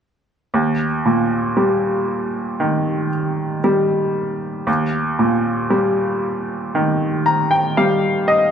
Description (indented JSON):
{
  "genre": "pop",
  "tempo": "58 BPM",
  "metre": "4/4",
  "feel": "straight",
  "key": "Eb major",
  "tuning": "A4 = 440 Hz",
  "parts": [
    { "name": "bright upright piano", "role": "accompaniment", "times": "0.5-8.5 s", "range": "Eb2 to Bb5", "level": "-16 LUFS", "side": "equal", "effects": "none" }
  ],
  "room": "moderate stone room reverb, RT60 1.1 s",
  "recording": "band playing live in one room",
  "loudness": "-17 LUFS",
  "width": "side -8 dB against mid",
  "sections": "0.5-8.5 A section",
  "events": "upright piano fill 6.7-8.5",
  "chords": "0.5 Eb"
}